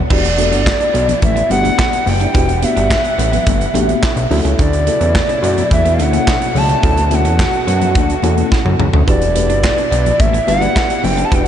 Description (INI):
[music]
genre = early-eighties boogie funk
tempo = 107 BPM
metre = 4/4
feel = straight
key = E dorian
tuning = A4 = 441 Hz
[part]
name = clean electric guitar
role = riff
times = 0.0-11.4 s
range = B3 to E4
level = -26 LUFS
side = right 5 dB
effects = wide subtle chorus
[part]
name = fat analog bass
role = bass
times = 0.0-11.5 s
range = E1 to F#2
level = -16 LUFS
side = equal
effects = none
[part]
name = hollow clarinet-like synth lead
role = melody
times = 0.1-11.5 s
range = D5 to A5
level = -17 LUFS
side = equal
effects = chorus, ping-pong delay
[part]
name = FM electric piano with auto-pan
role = accompaniment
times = 0.1-11.5 s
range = C#3 to B4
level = -23 LUFS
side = left 1 dB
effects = none
[part]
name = warm studio string section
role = sustained chords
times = 0.1-11.5 s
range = B2 to F#5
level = -24 LUFS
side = equal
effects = none
[part]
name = modern studio drum kit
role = drums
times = 0.1-11.5 s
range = crash cymbal, handclaps, hi-hat, kick drum, snare drum, toms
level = -17 LUFS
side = equal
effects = none
[part]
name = congas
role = percussion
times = 0.1-11.4 s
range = none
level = -25 LUFS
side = left 11 dB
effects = none
[sound]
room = moderate huge ambient reverb, RT60 8.5 s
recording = dreamy mix soaked in reverb, nothing above 10.3 kHz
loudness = -12 LUFS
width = side -10 dB against mid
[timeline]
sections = 0.1-11.5 A section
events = drum fill 8.5-9.1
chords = 0.1 Em7; 4.3 Dmaj9; 9.1 Em7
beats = | 0.10 0.66 1.22 1.78 | 2.35 2.91 3.47 4.03 | 4.59 5.15 5.71 6.27 | 6.83 7.39 7.95 8.51 | 9.07 9.64 10.20 10.76 | 11.32